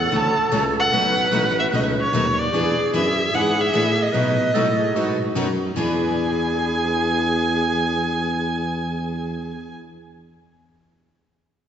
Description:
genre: acoustic string swing (jazz manouche).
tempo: 149 BPM.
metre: 4/4.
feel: swing 62% on 8ths.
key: E mixolydian.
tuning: A4 = 445 Hz.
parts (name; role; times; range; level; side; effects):
rich violin; melody; 0.0-9.7 s; C#5 to A5; -22 LUFS; right 1 dB; none.
growling clarinet; second line; 0.0-9.7 s; F#4 to B4; -26 LUFS; right 2 dB; none.
mellow tuba; bass; 0.0-9.7 s; A1 to B2; -24 LUFS; left 1 dB; none.
picked steel-string acoustic guitar; accompaniment; 0.1-10.0 s; B2 to G#4; -26 LUFS; left 4 dB; none.
picked steel-string acoustic guitar; accompaniment; 0.1-10.0 s; B2 to B4; -31 LUFS; right 2 dB; none.
room: wet concert hall reverb, RT60 2.3 s.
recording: recorded in a church or concert hall, nothing above 7.8 kHz.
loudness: -18 LUFS.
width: side -9 dB against mid.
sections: 0.0-5.8 A section; 5.8-9.0 B section.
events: none.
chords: 0.0 F#m7; 0.9 B7; 2.5 E7; 4.1 B7; 5.8 E7.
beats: 0.12 0.52 | 0.93 1.33 1.73 2.13 | 2.54 2.94 3.34 3.75 | 4.15 4.55 4.95 5.36 | 5.76 6.16 6.56 6.96 | 7.37 7.77 8.17 8.57.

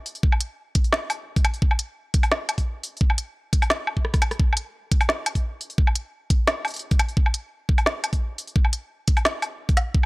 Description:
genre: drum and bass.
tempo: 173 BPM.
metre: 4/4.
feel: half-time.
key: none.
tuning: none.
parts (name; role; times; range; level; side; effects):
organic electronic drum kit; drums; 0.1-10.1 s; hi-hat, rim click, snare drum, woodblock; -23 LUFS; equal; none.
electronic kick drum; drums; 0.2-10.0 s; none; -20 LUFS; equal; none.
room: little or no reverb.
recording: dry, gritty hardware recording.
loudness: -21 LUFS.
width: side -23 dB against mid.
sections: 0.0-10.1 A section.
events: drum fill 4.0-4.4.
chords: none.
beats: | 0.23 0.58 0.93 1.27 | 1.62 1.97 2.31 2.66 | 3.01 3.35 3.70 4.05 | 4.40 4.74 5.09 5.44 | 5.78 6.13 6.48 6.82 | 7.17 7.52 7.86 8.21 | 8.56 8.90 9.25 9.60 | 9.95.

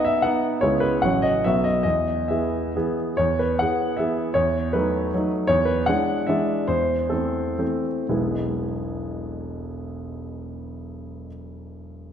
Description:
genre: classical, romantic triple-time dance for piano with dotted rhythms.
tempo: 113-167 BPM.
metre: 3/4.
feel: rubato.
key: E major.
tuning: A4 = 440 Hz.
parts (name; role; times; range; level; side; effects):
warm concert grand piano; solo; 0.0-12.1 s; E1 to F#5; -21 LUFS; equal; none.
room: wet concert hall reverb, RT60 2.4 s.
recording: minimal, uncompressed stereo recording.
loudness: -20 LUFS.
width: side -8 dB against mid.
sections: 0.0-3.2 A section; 3.2-8.1 B section; 8.1-11.1 C section.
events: slowing down 4.9-8.1.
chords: 0.0 B; 0.6 C#m7; 1.0 F#m/A; 1.4 B; 1.8 E; 4.3 B7/E; 5.5 E7; 6.7 Am/E; 8.1 E.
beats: 0.25 | 0.62 1.01 1.43 | 1.84 2.29 2.74 | 3.17 3.58 3.98 | 4.35 4.73 5.12 | 5.49 5.88 6.29 | 6.70 7.13 7.61 | 8.11 8.61 9.12 | 9.61 10.12 10.63.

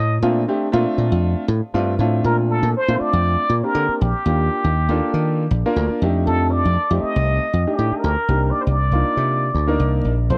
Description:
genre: electric jazz fusion.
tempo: 119 BPM.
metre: 4/4.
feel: straight.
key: unclear.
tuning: A4 = 441 Hz.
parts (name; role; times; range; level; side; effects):
trumpet with plunger mute; melody; 0.0-10.4 s; G4 to Eb5; -25 LUFS; equal; none.
dry thumbed slap bass; bass; 0.0-10.4 s; Bb1 to Eb3; -21 LUFS; equal; none.
warm grand piano; accompaniment; 0.2-10.4 s; A3 to Bb4; -25 LUFS; equal; none.
room: little or no reverb.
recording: dark, warm production.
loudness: -19 LUFS.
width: mono.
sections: 0.0-2.2 A section; 2.2-10.4 B section.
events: muted trumpet solo 0.0-2.2.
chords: 0.2 Bbmaj7; 2.2 Bbmaj9; 4.3 Ebmaj7; 6.0 F13; 8.3 Cm9.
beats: | 0.23 0.74 1.24 1.74 | 2.25 2.75 3.25 3.76 | 4.26 4.77 5.27 5.77 | 6.28 6.78 7.28 7.79 | 8.29 8.79 9.29 9.79 | 10.30.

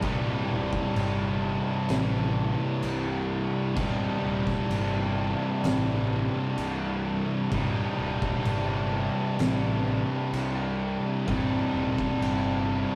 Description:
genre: stoner and doom metal.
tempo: 64 BPM.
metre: 4/4.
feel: straight.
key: C minor.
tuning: A4 = 440 Hz.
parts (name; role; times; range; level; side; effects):
thick fuzz guitar; riff; 0.0-13.0 s; C2 to C3; -34 LUFS; equal; distortion.
thick fuzz guitar; riff; 0.0-13.0 s; C2 to C3; -35 LUFS; equal; distortion.
tight distorted guitar; riff; 0.0-13.0 s; C2 to Eb4; -33 LUFS; equal; distortion.
fuzz fingered electric bass; bass; 0.0-12.8 s; C1 to C2; -35 LUFS; equal; overdrive.
oversized low-tuned drum kit; drums; 0.0-12.4 s; crash cymbal, kick drum, snare drum; -36 LUFS; equal; none.
room: moderate studio ambience, RT60 0.5 s.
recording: rough rehearsal-room recording, warm saturation.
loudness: -28 LUFS.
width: mono.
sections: 0.0-13.0 A section.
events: none.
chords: 0.0 Cm.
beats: | 0.02 0.96 1.89 2.83 | 3.77 4.70 5.64 6.58 | 7.52 8.46 9.39 10.33 | 11.27 12.21.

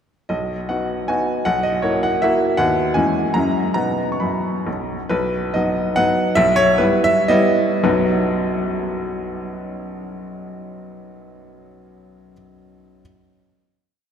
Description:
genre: classical, romantic triple-time dance for piano with dotted rhythms.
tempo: 103-172 BPM.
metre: 3/4.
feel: rubato.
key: B major.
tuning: A4 = 440 Hz.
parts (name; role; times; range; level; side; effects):
bright baby grand piano; solo; 0.3-13.0 s; B1 to C#6; -17 LUFS; equal; none.
room: wet cathedral reverb, RT60 5.0 s.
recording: in a vast, echoing space.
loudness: -16 LUFS.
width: side -8 dB against mid.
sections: 0.3-5.1 A section; 5.1-7.8 coda; 7.8-10.9 final chord.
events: slowing down 4.4-7.8.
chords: 0.3 B; 1.5 F#7/B; 2.6 B/D#; 3.0 C#m/E; 3.3 F#9; 3.8 B; 6.4 Em/B; 7.8 B.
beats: | 0.29 0.69 1.09 | 1.46 1.84 2.23 | 2.58 2.96 3.35 | 3.75 4.21 4.67 | 5.10 5.53 5.96 | 6.36 6.79 7.29 | 7.84 8.34 8.86 | 9.35 9.84 10.36.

